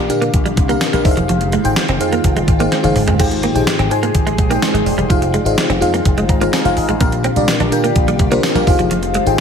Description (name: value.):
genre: 1980s-style pop.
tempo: 126 BPM.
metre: 4/4.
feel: straight.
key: F dorian.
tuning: A4 = 445 Hz.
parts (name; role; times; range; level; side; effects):
FM electric piano with soft pad layer; accompaniment; 0.0-9.4 s; Ab2 to C6; -17 LUFS; left 2 dB; chorus, phaser.
glassy FM pad; sustained chords; 0.0-9.4 s; C3 to Ab4; -23 LUFS; right 1 dB; ensemble chorus, built-in reverb.
direct-recorded clean electric guitar; riff; 0.0-9.2 s; F3 to D4; -22 LUFS; right 4 dB; lush chorus.
slap bass with an envelope filter; bass; 0.0-9.4 s; Eb1 to Bb2; -20 LUFS; equal; none.
clean 12-bit digital drum machine; drums; 0.1-9.4 s; crash cymbal, hi-hat, kick drum, snare drum, tambourine, toms; -17 LUFS; equal; gated reverb.
room: light reverb, digital ambience.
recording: none.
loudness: -12 LUFS.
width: side -7 dB against mid.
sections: 0.0-3.2 A section; 3.2-9.4 A section.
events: drum fill 2.7-3.2; FM electric piano fill 6.1-7.0.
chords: 0.0 Bb6; 1.1 Fm7; 3.2 Abmaj7; 5.1 Fm7; 7.0 Bb6; 8.7 Fm7.